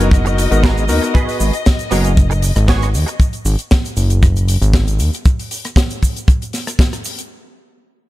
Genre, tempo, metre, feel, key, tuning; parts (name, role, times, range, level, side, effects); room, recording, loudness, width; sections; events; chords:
nu-disco, nu disco; 117 BPM; 4/4; straight; G# minor; A4 = 440 Hz
clear electric grand piano; accompaniment; 0.0-1.1 s; B3 to A#4; -20 LUFS; left 2 dB; sidechain pumping, digital delay
dark studio string section; sustained chords; 0.0-3.2 s; D#5; -25 LUFS; left 5 dB; sidechain pumping
direct-recorded clean electric guitar; riff; 0.0-3.1 s; B3 to C#5; -23 LUFS; right 4 dB; ensemble chorus, digital delay
fat analog bass; bass; 0.0-5.1 s; F#1 to D#2; -14 LUFS; equal; tube saturation
tight funk drum kit; drums; 0.0-7.3 s; hi-hat, rim click, shaker, snare drum; -23 LUFS; equal
kick drum; drums; 0.1-6.9 s; -13 LUFS; equal
studio reverb; dark, warm production; -13 LUFS; side -16 dB against mid
0.0-7.3 A section
drop 0.0-7.3
0.0 G#m9